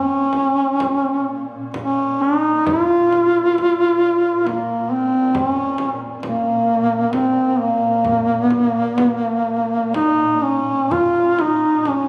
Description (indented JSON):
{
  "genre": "caucasian folk, Caucasian lament",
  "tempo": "61-69 BPM",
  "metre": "3/4",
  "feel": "rubato",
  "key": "Bb minor",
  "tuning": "A4 = 437 Hz",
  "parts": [
    { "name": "mellow duduk", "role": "melody", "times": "0.0-12.1 s", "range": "Bb3 to F4", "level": "-18 LUFS", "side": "equal", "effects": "none" },
    { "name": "granular cloud pad", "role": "drone", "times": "0.5-12.1 s", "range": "Bb2", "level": "-36 LUFS", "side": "equal", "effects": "built-in reverb" },
    { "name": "frame drum", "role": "percussion", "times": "0.3-12.1 s", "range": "none", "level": "-35 LUFS", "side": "equal", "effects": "none" }
  ],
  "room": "moderate church reverb, RT60 3.6 s",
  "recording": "recorded on a phone in the room, studio ambience",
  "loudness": "-18 LUFS",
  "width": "mono",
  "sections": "0.0-10.9 A section; 10.9-12.1 B section",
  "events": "none",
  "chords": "none"
}